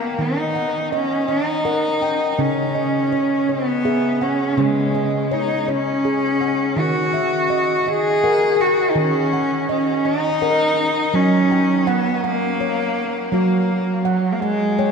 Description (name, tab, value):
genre	world meditative, meditative tuned percussion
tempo	55 BPM (dotted quarters)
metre	6/8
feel	straight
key	unclear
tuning	A4 = 440 Hz
part	rich cello	melody	0.0-14.9 s	F#3 to G#4	-19 LUFS	left 1 dB	shimmer reverb, ping-pong delay
part	handpan	arpeggios	0.0-14.9 s	C#3 to G5	-21 LUFS	right 2 dB	shimmer reverb
room	wet cathedral reverb, RT60 5.3 s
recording	in a vast, echoing space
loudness	-17 LUFS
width	side -5 dB against mid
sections	0.0-14.9 A section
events	none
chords	0.0 D#m; 2.4 C#m; 6.8 D#m; 11.1 F#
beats	| 0.19 1.29 | 2.39 3.49 | 4.58 5.68 | 6.78 7.87 | 8.96 10.06 | 11.15 12.24 | 13.33 14.43